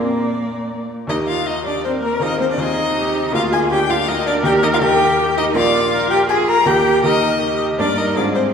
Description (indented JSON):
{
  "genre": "quick classical-period movement for piano quartet",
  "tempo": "160 BPM",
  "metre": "3/4",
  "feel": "straight",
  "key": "Eb major",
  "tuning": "A4 = 441 Hz",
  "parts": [
    { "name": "warm violin", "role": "melody", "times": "0.0-8.4 s", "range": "Bb4 to Bb5", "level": "-19 LUFS", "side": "left 6 dB", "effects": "none" },
    { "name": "dark cello", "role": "second line", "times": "0.0-8.5 s", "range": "Bb3 to Bb4", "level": "-20 LUFS", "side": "right 3 dB", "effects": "none" },
    { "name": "bright baby grand piano", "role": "accompaniment", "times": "0.0-8.5 s", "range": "Bb1 to Bb4", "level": "-22 LUFS", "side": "left 1 dB", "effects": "none" },
    { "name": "warm viola", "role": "accompaniment", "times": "0.0-8.5 s", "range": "D4 to D5", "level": "-23 LUFS", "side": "right 2 dB", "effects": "none" }
  ],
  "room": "wet concert hall reverb, RT60 2.2 s",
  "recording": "heard from further back in the room",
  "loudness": "-15 LUFS",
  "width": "side -6 dB against mid",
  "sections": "0.0-1.1 A section; 1.1-8.5 B section",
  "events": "none",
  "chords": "0.0 Bb; 1.1 Eb; 2.2 Fm7/Eb; 3.3 Bb7/D; 4.5 Eb; 5.6 Bb; 6.7 Eb; 7.8 Eb/G; 8.2 Fm/Ab",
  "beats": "0.32 0.70 | 1.09 1.46 1.84 | 2.21 2.59 2.96 | 3.33 3.71 4.08 | 4.45 4.82 5.19 | 5.56 5.93 6.31 | 6.68 7.06 7.43 | 7.80 8.17"
}